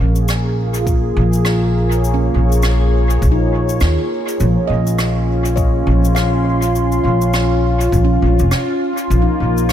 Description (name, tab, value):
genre	ambient dub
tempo	102 BPM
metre	4/4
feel	swing 58% on 16ths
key	Bb minor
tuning	A4 = 440 Hz
part	warm analog pad	sustained chords	0.0-9.7 s	Bb3 to C6	-19 LUFS	equal	lush chorus
part	handpan	arpeggios	0.0-9.7 s	Db4 to F5	-26 LUFS	equal	ping-pong delay
part	upright bass	bass	0.0-9.7 s	F1 to Eb2	-15 LUFS	equal	none
part	cabasa and rim click	drums	0.2-9.7 s	none	-26 LUFS	equal	dub echo
part	electronic kick drum	drums	0.9-8.1 s	none	-18 LUFS	equal	none
room	moderate plate reverb, RT60 2.4 s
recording	dreamy mix soaked in reverb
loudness	-13 LUFS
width	side -10 dB against mid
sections	0.0-9.7 A section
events	none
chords	0.0 Bbm7; 4.4 Dbmaj7/Bb; 9.1 Bbm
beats	0.28 0.87 1.46 | 2.04 2.63 3.22 3.81 | 4.40 4.99 5.57 6.16 | 6.75 7.34 7.93 8.52 | 9.10 9.69